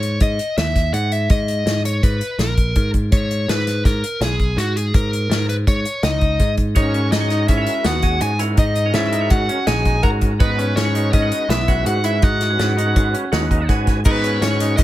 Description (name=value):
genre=progressive instrumental, band music in an uneven meter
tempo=165 BPM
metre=5/4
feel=straight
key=G# minor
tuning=A4 = 441 Hz
part: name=dark smooth lead guitar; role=melody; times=0.0-14.8 s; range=F#4 to A#5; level=-23 LUFS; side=equal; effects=overdrive, plate reverb, ping-pong delay
part: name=picked electric bass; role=bass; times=0.0-14.8 s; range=A#1 to G#2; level=-20 LUFS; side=equal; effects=none
part: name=unplugged drum kit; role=drums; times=0.0-14.8 s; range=crash cymbal, hi-hat, kick drum, snare drum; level=-19 LUFS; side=equal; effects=none
part: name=mellow alto saxophone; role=second line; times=6.0-14.8 s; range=B3 to A#4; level=-27 LUFS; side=left 4 dB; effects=plate reverb
part: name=overdriven tonewheel organ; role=accompaniment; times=6.7-14.8 s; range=G#3 to G#5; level=-27 LUFS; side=right 2 dB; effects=chorus vibrato, stopped rotary speaker, plate reverb
part: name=bright grand piano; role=arpeggios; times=6.8-14.8 s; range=B3 to F#4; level=-27 LUFS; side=right 3 dB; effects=plate reverb, ping-pong delay
part: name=egg shaker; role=percussion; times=14.1-14.8 s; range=none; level=-31 LUFS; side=left 9 dB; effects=none
room=light reverb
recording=none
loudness=-16 LUFS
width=side -14 dB against mid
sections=0.0-14.0 A section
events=tonewheel organ fill 13.3-14.0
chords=0.0 G#5; 1.3 D#5/G#; 3.1 G#madd11; 4.9 Bmaj13 (rootless); 6.8 G#7(no3); 8.6 D#m7/G#; 10.4 E6/G#; 12.2 G#m7